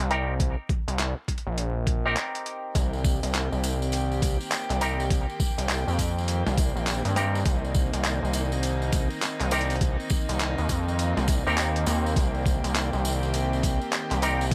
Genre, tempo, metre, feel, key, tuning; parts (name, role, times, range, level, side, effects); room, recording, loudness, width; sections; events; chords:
glitch hop; 102 BPM; 4/4; swing 63% on 16ths; C minor; A4 = 440 Hz
gritty driven synth bass; bass; 0.0-14.5 s; Bb1 to G2; -29 LUFS; equal; tube saturation
boom bap sampler-style drum kit; drums; 0.0-14.5 s; handclaps, hi-hat, snare drum; -33 LUFS; equal; overdrive
clav; stabs; 0.1-14.5 s; C4 to Bb4; -33 LUFS; equal; auto-wah, sidechain pumping, tape echo
electronic kick drum; drums; 0.4-14.5 s; -28 LUFS; equal; overdrive
rich chamber string section; sustained chords; 2.7-14.5 s; Eb3 to G4; -35 LUFS; equal; sidechain pumping
tambourine; percussion; 2.8-14.5 s; -40 LUFS; equal
digital ambience; vinyl crackle; -26 LUFS; mono
0.0-14.5 A section
break 2.2-2.8
0.0 Cm7